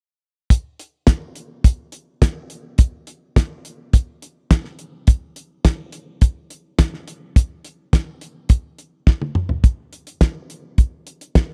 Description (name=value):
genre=rock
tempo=105 BPM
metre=4/4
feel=straight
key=none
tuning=none
part: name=damped 70s drum kit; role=drums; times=0.5-11.5 s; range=hi-hat, kick drum, snare drum, toms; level=-16 LUFS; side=equal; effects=none
room=little or no reverb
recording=dry, close 1970s-style studio recording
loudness=-20 LUFS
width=mono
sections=0.5-9.6 A section; 9.6-11.5 B section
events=drum fill 9.1-9.6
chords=none